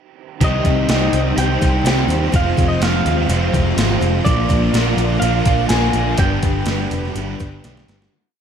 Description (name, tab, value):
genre	rock, shoegaze and dream pop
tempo	125 BPM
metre	4/4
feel	straight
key	C minor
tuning	A4 = 440 Hz
part	electric guitar through a small old amp	melody	0.4-7.6 s	D5 to Ab5	-24 LUFS	equal	digital delay
part	string machine, full ensemble	sustained chords	0.4-8.1 s	Ab3 to B5	-28 LUFS	equal	ensemble chorus
part	picked twelve-string acoustic guitar	arpeggios	0.4-8.1 s	F3 to G4	-28 LUFS	left 6 dB	ensemble chorus, digital delay
part	overdriven electric guitar	riff	0.4-8.1 s	F2 to G4	-22 LUFS	right 12 dB	reverse reverb
part	thick fuzz guitar	riff	0.4-8.1 s	F2 to C4	-23 LUFS	left 11 dB	distortion, ensemble chorus
part	vintage muted picked electric bass	bass	0.4-8.1 s	F1 to Eb2	-20 LUFS	equal	none
part	gated 80s digital drum machine	drums	0.4-8.1 s	hi-hat, kick drum, snare drum	-20 LUFS	equal	gated reverb, gated reverb snare, overdrive
room	light reverb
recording	dark, warm production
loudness	-14 LUFS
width	side -8 dB against mid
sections	0.4-8.1 verse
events	fade-out 6.2-8.1; drum fill 7.6-8.1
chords	0.4 Cm; 2.3 Fmadd9; 4.2 Bb; 6.2 G